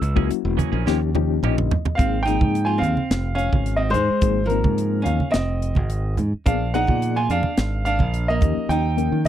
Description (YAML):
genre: electric jazz fusion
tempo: 107 BPM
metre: 4/4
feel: straight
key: Ab major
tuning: A4 = 440 Hz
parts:
  - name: warm grand piano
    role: melody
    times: 0.0-9.3 s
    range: Bb4 to E6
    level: -25 LUFS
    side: right 1 dB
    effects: none
  - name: reed electric piano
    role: accompaniment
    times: 0.0-9.3 s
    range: E#3 to D#5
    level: -26 LUFS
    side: left 20 dB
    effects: fast tremolo
  - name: semi-hollow electric guitar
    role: stabs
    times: 0.0-1.9 s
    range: E3 to G#4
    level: -29 LUFS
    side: right 19 dB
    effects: analog chorus
  - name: modern bright fingered electric bass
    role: bass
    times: 0.0-9.3 s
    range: E1 to Eb3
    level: -22 LUFS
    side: equal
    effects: none
  - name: tight funk drum kit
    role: drums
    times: 0.0-9.1 s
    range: hi-hat, kick drum, snare drum, toms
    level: -22 LUFS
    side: equal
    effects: none
  - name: congas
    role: percussion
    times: 0.6-9.3 s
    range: none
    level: -26 LUFS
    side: right 4 dB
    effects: none
  - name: archtop guitar, miked and amplified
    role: second line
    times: 2.0-9.3 s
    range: F3 to F4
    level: -28 LUFS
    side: right 3 dB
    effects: none
room: little or no reverb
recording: dry, close 1970s-style studio recording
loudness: -18 LUFS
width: side -11 dB against mid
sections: 0.0-2.0 A section; 2.0-9.3 B section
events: grand piano solo 0.0-2.0; drum fill 0.9-2.0; reed electric piano fill 1.1-2.0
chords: 0.0 F#9; 0.9 D#9; 2.0 Ab69; 6.5 Bb7b9; 8.4 Eb9